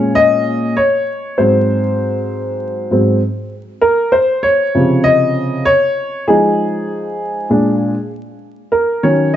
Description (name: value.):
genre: hip hop.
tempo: 98 BPM.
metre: 4/4.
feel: swing 58% on 16ths.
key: Bb minor.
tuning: A4 = 439 Hz.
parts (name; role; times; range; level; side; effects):
warm upright piano; solo; 0.0-9.4 s; Ab2 to Eb5; -12 LUFS; equal; none.
room: light reverb, small room ambience.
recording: dark, warm production, vinyl crackle, nothing above 7.9 kHz.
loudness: -12 LUFS.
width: side -11 dB against mid.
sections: 0.0-9.4 A section.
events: upright piano solo 0.0-9.4.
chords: 0.0 Bbm7; 1.4 Ab7; 3.8 Dbmaj9; 6.3 Fm7; 7.5 Bb7; 8.7 Ebm7.